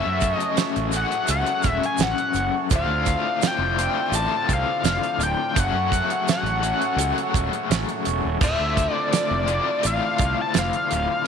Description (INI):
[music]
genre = psychedelic rock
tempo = 84 BPM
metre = 4/4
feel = straight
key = unclear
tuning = A4 = 440 Hz
[part]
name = overdriven synth lead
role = melody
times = 0.0-11.3 s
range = D5 to A5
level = -24 LUFS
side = left 3 dB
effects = distortion, tape echo
[part]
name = hand-pumped harmonium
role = sustained chords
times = 0.0-11.3 s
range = A3 to C#5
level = -30 LUFS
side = right 12 dB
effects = none
[part]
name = raw garage guitar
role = riff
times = 0.0-11.3 s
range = D2 to F#4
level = -27 LUFS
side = left 14 dB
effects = overdrive, tremolo
[part]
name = fuzz fingered electric bass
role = bass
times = 0.1-11.1 s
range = D1 to F#2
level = -27 LUFS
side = right 1 dB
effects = overdrive
[part]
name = damped 70s drum kit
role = drums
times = 0.2-11.1 s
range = crash cymbal, hi-hat, kick drum, snare drum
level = -24 LUFS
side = right 5 dB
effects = none
[part]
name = tube shaker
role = percussion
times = 0.2-11.1 s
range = none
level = -33 LUFS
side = right 20 dB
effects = none
[sound]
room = light reverb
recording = 1960s-style stereo with parts hard left and right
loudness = -20 LUFS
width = side -7 dB against mid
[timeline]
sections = 0.0-11.3 A section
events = none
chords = 0.0 F#m; 2.7 Dm7; 5.6 F#m; 8.4 Dm7